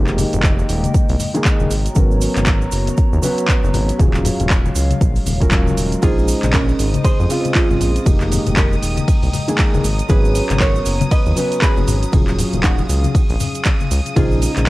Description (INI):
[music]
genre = deep house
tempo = 118 BPM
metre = 4/4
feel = swing 59% on 16ths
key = unclear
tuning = A4 = 438 Hz
[part]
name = dark analog pad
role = sustained chords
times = 0.0-14.7 s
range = Gb3 to Bb5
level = -28 LUFS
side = equal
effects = wide subtle chorus, sidechain pumping, cassette tape
[part]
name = felt-muted upright piano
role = stabs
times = 0.0-14.7 s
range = Db3 to C5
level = -22 LUFS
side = equal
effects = sidechain pumping, cassette tape, analog delay
[part]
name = round analog bass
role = bass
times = 0.0-14.7 s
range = Eb1 to F2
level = -19 LUFS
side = equal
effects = sidechain pumping
[part]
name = punchy analog drum machine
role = drums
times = 0.1-14.7 s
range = handclaps, hi-hat, ride cymbal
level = -24 LUFS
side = equal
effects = cassette tape
[part]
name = egg shaker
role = percussion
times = 0.1-14.7 s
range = none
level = -32 LUFS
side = right 11 dB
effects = none
[part]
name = congas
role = percussion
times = 0.2-14.7 s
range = none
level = -24 LUFS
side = left 5 dB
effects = none
[part]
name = electronic kick drum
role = drums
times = 0.4-14.3 s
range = none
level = -16 LUFS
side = equal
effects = overdrive, cassette tape
[part]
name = vintage hollow-body jazz guitar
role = melody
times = 6.0-14.5 s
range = Db4 to Eb5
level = -24 LUFS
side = right 3 dB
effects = analog delay
[part]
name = string machine, violins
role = texture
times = 6.0-14.7 s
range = Eb6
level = -32 LUFS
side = equal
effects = ensemble chorus, sidechain pumping, cassette tape
[sound]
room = little or no reverb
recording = home recording on cassette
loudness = -14 LUFS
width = side -18 dB against mid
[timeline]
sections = 0.0-14.7 A section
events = none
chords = 0.0 Fm11; 1.7 Abm11; 4.0 Ebm11; 6.0 Bbm11; 8.1 Fm11; 9.8 Abm11; 12.1 Ebm11; 14.2 Bbm11